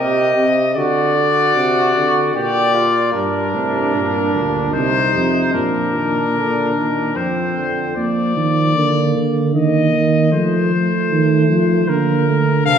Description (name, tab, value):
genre	classical, imitative canzona for brass ensemble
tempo	76 BPM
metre	3/4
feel	straight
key	G minor, Bb major from 3.1 s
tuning	A4 = 440 Hz
part	bright trumpet	melody	0.0-12.8 s	Bb4 to F5	-19 LUFS	left 3 dB	none
part	clear flugelhorn	second line	0.0-8.0, 12.7-12.8 s	C4 to A4	-20 LUFS	right 2 dB	none
part	mellow euphonium	accompaniment	0.0-12.8 s	Bb2 to C4	-21 LUFS	right 1 dB	none
part	mellow tuba	bass	3.1-12.8 s	C2 to Bb3	-18 LUFS	right 2 dB	none
room	wet scoring stage reverb, RT60 1.9 s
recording	heard from further back in the room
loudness	-14 LUFS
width	side -8 dB against mid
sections	0.0-3.1 A section; 3.1-8.0 B section; 8.0-12.8 C section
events	none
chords	0.0 Cm; 0.8 D; 2.3 Gm/Bb; 3.1 Gm; 4.7 Cm; 5.5 Fsus4/Bb; 7.2 F5; 8.0 Bb; 9.5 Eb5; 10.3 F; 11.9 Bb/D